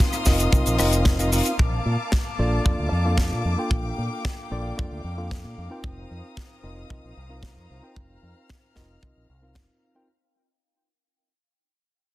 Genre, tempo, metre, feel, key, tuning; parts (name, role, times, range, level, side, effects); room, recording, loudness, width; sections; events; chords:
nu-disco, nu disco; 113 BPM; 4/4; straight; A4 = 440 Hz
tine electric piano; accompaniment; 0.0-10.1 s; Bb3 to G5; -29 LUFS; equal; dub echo
dark studio violin section; sustained chords; 0.0-10.1 s; Bb3 to F6; -32 LUFS; left 2 dB; sidechain pumping
kick drum; drums; 0.0-9.7 s; -22 LUFS; equal; soft clipping on snare
tight funk drum kit; drums; 0.0-9.7 s; cabasa, hi-hat, rim click, snare drum; -28 LUFS; left 1 dB
fingered electric bass with an envelope filter; bass; 0.3-9.7 s; F1 to Bb2; -26 LUFS; equal; sidechain pumping
small room ambience; dense, heavily limited modern master; -21 LUFS; side -17 dB against mid
0.0-10.1 A section
fade-out 0.0-10.1
0.0 F7sus4; 1.6 Bbmaj7; 5.8 F7sus4